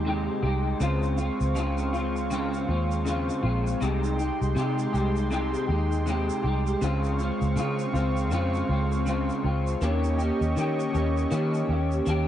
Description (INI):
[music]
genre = indie pop, bedroom pop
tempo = 80 BPM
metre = 4/4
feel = swing 60% on 16ths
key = Ab major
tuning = A4 = 440 Hz
[part]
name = electric guitar through a small old amp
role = accompaniment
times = 0.0-12.3 s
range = C3 to G4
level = -27 LUFS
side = left 1 dB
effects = ensemble chorus, vibrato effect
[part]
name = warm analog pad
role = sustained chords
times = 0.0-12.3 s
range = Ab3 to Db6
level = -34 LUFS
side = right 3 dB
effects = chorus
[part]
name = vintage muted fingered electric bass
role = bass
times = 0.0-12.3 s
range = Bb1 to Eb3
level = -27 LUFS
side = equal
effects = none
[part]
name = egg shaker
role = percussion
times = 0.8-12.3 s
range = none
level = -48 LUFS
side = right 10 dB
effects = none
[sound]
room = digital ambience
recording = cassette tape, nothing above 10.4 kHz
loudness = -24 LUFS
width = side -11 dB against mid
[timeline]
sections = 0.0-12.3 A section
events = none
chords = 0.0 Abmaj7; 0.8 Dbmaj7; 3.8 Abmaj7/C; 6.8 Dbmaj7; 9.8 Eb7